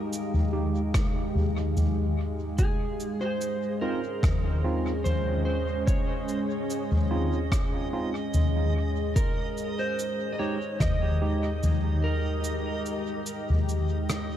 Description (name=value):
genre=ambient dub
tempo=73 BPM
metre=4/4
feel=swing 53% on 16ths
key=F minor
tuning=A4 = 438 Hz
part: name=electric slide guitar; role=melody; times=0.0-13.2 s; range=Ab4 to Eb5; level=-34 LUFS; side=right 2 dB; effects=dub echo
part: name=deep dark ambient pad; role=sustained chords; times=0.0-14.4 s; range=Ab3 to F5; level=-32 LUFS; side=equal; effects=chorus, built-in reverb
part: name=soft-mallet drum kit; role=drums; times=0.1-14.3 s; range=cabasa, rim click, toms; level=-27 LUFS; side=left 1 dB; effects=none
part: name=tine electric piano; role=stabs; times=0.5-11.5 s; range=Ab3 to G4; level=-35 LUFS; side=right 4 dB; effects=dub echo
part: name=electronic kick drum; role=drums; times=0.9-11.0 s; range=none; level=-26 LUFS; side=equal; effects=overdrive
part: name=backwards swelling texture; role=texture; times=3.5-14.4 s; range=Eb5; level=-40 LUFS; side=right 3 dB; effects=built-in reverb
room=studio reverb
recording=dark, warm production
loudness=-25 LUFS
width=side -11 dB against mid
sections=0.0-14.4 A section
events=break 12.4-14.4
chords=0.0 Fm9; 2.6 Dbmaj7; 9.2 Fm9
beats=0.12 0.94 1.76 | 2.59 3.41 4.23 5.05 | 5.88 6.70 7.52 8.34 | 9.16 9.98 10.81 11.63 | 12.45 13.27 14.09